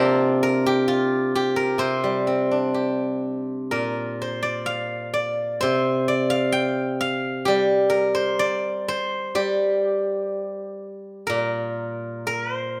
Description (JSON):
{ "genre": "chinese traditional, Chinese solo plucked strings", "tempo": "63 BPM", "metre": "2/4", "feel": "rubato", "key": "G yu mode", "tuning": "A4 = 440 Hz", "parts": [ { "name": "steel-string zither", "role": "solo", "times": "0.0-12.8 s", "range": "Bb2 to G5", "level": "-23 LUFS", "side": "equal", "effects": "none" } ], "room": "moderate recital hall reverb, RT60 1.6 s", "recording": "none", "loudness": "-23 LUFS", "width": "mono", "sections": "0.0-11.3 A section; 11.3-12.8 B section", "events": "none", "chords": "none" }